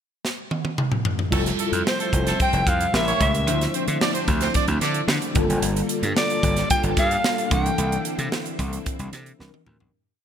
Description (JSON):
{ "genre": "polished 1980s jazz-funk pop", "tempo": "111 BPM", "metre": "4/4", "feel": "straight", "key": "G dorian", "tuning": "A4 = 444 Hz", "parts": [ { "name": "crisp fusion drum kit", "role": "drums", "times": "0.2-9.9 s", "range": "crash cymbal, hi-hat, kick drum, snare drum, toms", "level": "-24 LUFS", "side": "right 1 dB", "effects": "none" }, { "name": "warm horn section", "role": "second line", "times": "1.3-5.0 s", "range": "A3 to D5", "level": "-28 LUFS", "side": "right 5 dB", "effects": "none" }, { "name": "mellow tine electric piano", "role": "accompaniment", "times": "1.3-10.0 s", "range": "E3 to C5", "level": "-28 LUFS", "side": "left 3 dB", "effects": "medium stereo tremolo, ensemble chorus" }, { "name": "string machine, full ensemble", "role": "sustained chords", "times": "1.3-9.9 s", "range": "Bb2 to E5", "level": "-31 LUFS", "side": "equal", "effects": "ensemble chorus" }, { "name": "gritty slap bass", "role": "bass", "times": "1.3-9.9 s", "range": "F1 to D3", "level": "-24 LUFS", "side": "equal", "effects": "overdrive" }, { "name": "breathy soprano saxophone", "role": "melody", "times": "1.9-8.0 s", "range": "C5 to G5", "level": "-25 LUFS", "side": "equal", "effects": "ping-pong delay" } ], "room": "light reverb, studio reverb", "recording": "bright 1980s-style digital production", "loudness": "-20 LUFS", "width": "side -8 dB against mid", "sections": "0.0-1.3 pickup bar; 1.3-9.9 pre-chorus", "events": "drum fill 0.2-1.3, 9.4-9.9; fade-out 7.8-9.9", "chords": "0.0 N.C.; 1.3 Fmaj9; 2.9 A7b9; 3.5 Dm9; 5.4 Gm9; 7.5 C13; 9.4 C9", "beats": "0.24 0.78 | 1.32 1.86 2.40 2.94 | 3.48 4.01 4.55 5.09 | 5.63 6.17 6.71 7.24 | 7.78 8.32 8.86 9.40" }